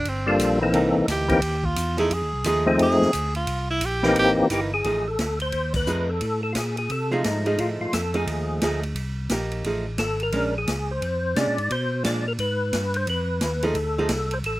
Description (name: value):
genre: soul jazz organ trio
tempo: 175 BPM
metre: 4/4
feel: swing 63% on 8ths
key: F mixolydian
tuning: A4 = 440 Hz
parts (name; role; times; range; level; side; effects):
- bright tenor saxophone; melody; 0.0-4.3 s; C4 to G#4; -25 LUFS; right 1 dB; slapback echo
- tonewheel organ; bass; 0.0-14.6 s; G1 to C3; -28 LUFS; equal; overdrive, chorus vibrato, slow rotary speaker
- swinging big-band drum kit; drums; 0.1-14.5 s; crash cymbal, hi-hat, kick drum, ride cymbal, snare drum; -31 LUFS; equal; none
- percussive tonewheel organ; melody; 0.3-14.6 s; E3 to D5; -23 LUFS; left 1 dB; slow rotary speaker, chorus vibrato
- archtop guitar, miked and amplified; accompaniment; 0.7-14.1 s; E3 to Ab4; -26 LUFS; right 2 dB; slapback echo
room: little or no reverb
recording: recorded outdoors, with no room sound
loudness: -21 LUFS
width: side -17 dB against mid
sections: 0.0-4.8 A section; 4.8-14.6 B section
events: tenor saxophone solo 0.0-4.8; band accent 5.7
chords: 0.0 Gm7; 0.7 C7#9; 2.1 F7#9; 3.5 C7#9; 4.8 F7#9; 9.0 Cm7; 9.6 F7#9; 10.3 Bb7#9; 11.7 Bdim7; 13.1 F7#9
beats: 0.06 0.40 | 0.74 1.08 1.43 1.77 | 2.11 2.45 2.79 3.14 | 3.48 3.82 4.16 4.51 | 4.85 5.19 5.53 5.88 | 6.22 6.56 6.91 7.25 | 7.59 7.93 8.28 8.62 | 8.96 9.30 9.65 9.99 | 10.33 10.68 11.02 11.36 | 11.70 12.05 12.39 12.73 | 13.07 13.42 13.76 14.10 | 14.45